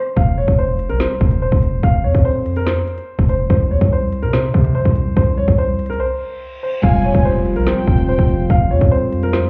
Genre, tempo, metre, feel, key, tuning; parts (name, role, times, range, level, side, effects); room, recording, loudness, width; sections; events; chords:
hip hop, drill; 144 BPM; 4/4; half-time; F minor; A4 = 440 Hz
clear upright piano; melody; 0.0-9.5 s; Bb4 to F5; -23 LUFS; equal; low-pass filter, digital delay
hard-hitting 808-style bass; bass; 0.2-9.4 s; E1 to C3; -20 LUFS; equal
drill drum kit; drums; 0.2-9.4 s; crash cymbal, hi-hat, kick drum, snare drum; -18 LUFS; equal
reverse cymbal and downlifter; sound effects; 6.2-9.5 s; -37 LUFS; equal
warm studio violin section; second line; 6.8-8.5 s; G5 to Ab5; -31 LUFS; equal; digital delay
soft electric-piano-like synth keys; accompaniment; 6.8-9.5 s; G3 to F4; -24 LUFS; equal; chorus, phaser, low-pass filter
deep dark ambient pad; sustained chords; 7.5-9.5 s; F3 to F4; -27 LUFS; equal; chorus, built-in reverb
little or no reverb; heard muffled through a wall, club reverb, EQ; -16 LUFS; mono
0.0-6.8 A section; 6.8-9.5 B section
break 0.0, 6.0-6.8; reverse cymbal 6.2-6.8
0.2 F5; 3.5 N.C.; 6.8 Fmadd9